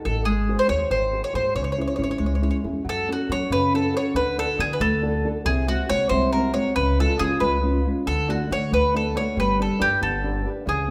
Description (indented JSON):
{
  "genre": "italian folk, Italian serenade",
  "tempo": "92 BPM (dotted quarters)",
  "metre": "6/8",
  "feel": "straight",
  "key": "F# harmonic minor",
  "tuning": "A4 = 440 Hz",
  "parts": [
    { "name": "nylon-string guitar", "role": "accompaniment", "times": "0.0-10.9 s", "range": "B#2 to B#4", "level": "-28 LUFS", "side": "equal", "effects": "none" },
    { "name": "bowl-back mandolin", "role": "melody", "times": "0.1-10.9 s", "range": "F#4 to C#5", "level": "-26 LUFS", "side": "equal", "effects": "none" },
    { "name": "upright bass", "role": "bass", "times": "0.1-10.9 s", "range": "G1 to F#3", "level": "-29 LUFS", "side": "equal", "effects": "none" }
  ],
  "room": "moderate recital hall reverb, RT60 1.7 s",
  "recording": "none",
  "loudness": "-23 LUFS",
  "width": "mono",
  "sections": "0.0-2.9 A section; 2.9-10.9 B section",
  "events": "none",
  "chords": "0.3 G#7; 1.6 C#m; 2.9 F#m; 4.2 D; 5.5 G#7/B#; 6.8 C#; 8.1 D; 9.4 G"
}